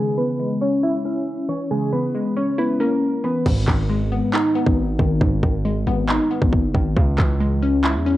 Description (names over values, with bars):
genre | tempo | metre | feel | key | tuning
hip hop, trap | 137 BPM | 4/4 | half-time | G# minor | A4 = 442 Hz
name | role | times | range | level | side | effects
soft electric-piano-like synth keys | melody | 0.0-3.4 s | G#3 to E5 | -23 LUFS | equal | chorus, analog delay
glassy wavetable pluck | accompaniment | 0.0-8.2 s | G#2 to E4 | -21 LUFS | left 1 dB | chorus, cassette tape
distorted 808-style bass | bass | 3.5-8.2 s | F#1 to E2 | -22 LUFS | equal | distortion
trap drum kit | drums | 3.5-7.9 s | crash cymbal, handclaps, kick drum | -21 LUFS | equal | cassette tape
room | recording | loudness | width
light reverb | home recording on cassette, low-pass filter | -18 LUFS | side -15 dB against mid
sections
0.0-3.5 A section; 3.5-8.2 B section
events
filter sweep 0.0-3.5; hi-hats muted 3.5-8.2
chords
0.0 C#m; 3.5 G#m; 7.0 C#m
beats
0.40 0.83 1.27 | 1.71 2.15 2.58 3.02 | 3.46 3.90 4.34 4.77 | 5.21 5.65 6.09 6.53 | 6.96 7.40 7.84